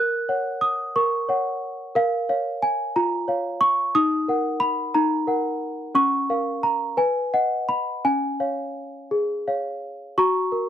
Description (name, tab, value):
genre	classical, lullaby for celesta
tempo	59 BPM (dotted quarters)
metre	6/8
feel	rubato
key	unclear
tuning	A4 = 440 Hz
part	small celesta	solo	0.0-10.7 s	C#4 to Gb6	-21 LUFS	equal	none
room	light reverb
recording	none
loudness	-21 LUFS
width	side -10 dB against mid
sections	0.0-10.2 A section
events	none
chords	0.0 Gb/Bb; 1.9 A#m; 3.9 D#m; 5.9 A#m/C#; 7.0 B6; 8.0 C#; 10.2 F#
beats	0.95 | 1.94 2.94 | 3.94 4.94 | 5.95 6.98 | 8.03 9.11 | 10.16